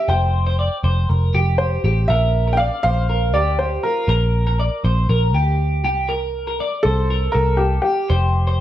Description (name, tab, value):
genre	jangly indie pop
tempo	120 BPM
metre	4/4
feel	straight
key	Bb lydian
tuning	A4 = 440 Hz
part	warm upright piano	melody	0.0-8.6 s	G4 to G5	-21 LUFS	equal	slapback echo, plate reverb
part	twelve-string electric guitar	arpeggios	0.0-8.6 s	F4 to D5	-23 LUFS	equal	lush chorus, plate reverb
part	vintage muted picked electric bass	bass	0.1-8.6 s	F1 to D2	-18 LUFS	equal	none
room	moderate club reverb, RT60 0.8 s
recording	dark, warm production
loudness	-16 LUFS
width	side -12 dB against mid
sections	0.0-8.6 A section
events	none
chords	0.1 Fsus2; 2.1 Bb; 5.8 C5; 8.1 Fsus2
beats	| 0.08 0.58 1.09 1.59 | 2.09 2.59 3.09 3.59 | 4.09 4.60 5.10 5.60 | 6.10 6.60 7.10 7.60 | 8.10 8.60